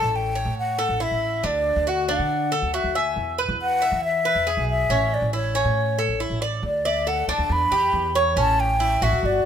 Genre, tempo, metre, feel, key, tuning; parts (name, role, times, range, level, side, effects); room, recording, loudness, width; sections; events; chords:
latin, Cuban son and guajira; 138 BPM; 4/4; straight; D major; A4 = 441 Hz
breathy mellow concert flute; melody; 0.0-9.5 s; C#5 to B5; -23 LUFS; left 1 dB
Cuban tres; arpeggios; 0.0-9.4 s; C#4 to E5; -25 LUFS; right 1 dB
upright bass; bass; 0.0-9.4 s; G1 to E3; -27 LUFS; right 1 dB
light reverb; minimal, uncompressed stereo recording; -20 LUFS; side -8 dB against mid
0.0-6.6 A section; 6.6-9.5 B section
0.0 A; 1.4 D; 3.2 E; 4.9 A; 6.6 D5; 7.5 Em7; 8.4 A7